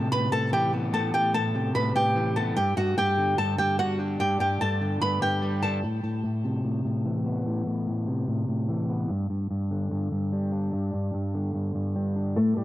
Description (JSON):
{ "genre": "hip hop", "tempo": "147 BPM", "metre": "4/4", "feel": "half-time", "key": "A dorian", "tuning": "A4 = 442 Hz", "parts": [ { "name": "flamenco guitar", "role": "melody", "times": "0.0-5.8, 12.4-12.6 s", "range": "G3 to B5", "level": "-25 LUFS", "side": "equal", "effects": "low-pass filter, digital delay" }, { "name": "electric guitar at the edge of break-up", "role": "accompaniment", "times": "0.0-12.6 s", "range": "G2 to D4", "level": "-26 LUFS", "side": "equal", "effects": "low-pass filter" } ], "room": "light reverb", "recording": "dark, warm production", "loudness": "-24 LUFS", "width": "side -14 dB against mid", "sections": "0.0-5.8 A section; 5.8-12.6 B section", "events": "break 5.8-12.4; filter sweep 5.8-12.6", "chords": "0.0 Amadd9; 2.6 G5; 5.8 Amadd9; 9.1 G5", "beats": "0.12 0.53 | 0.93 1.34 1.75 2.16 | 2.57 2.98 3.38 3.79 | 4.20 4.61 5.02 5.42 | 5.83 6.24 6.65 7.06 | 7.46 7.87 8.28 8.69 | 9.10 9.51 9.91 10.32 | 10.73 11.14 11.55 11.96 | 12.36" }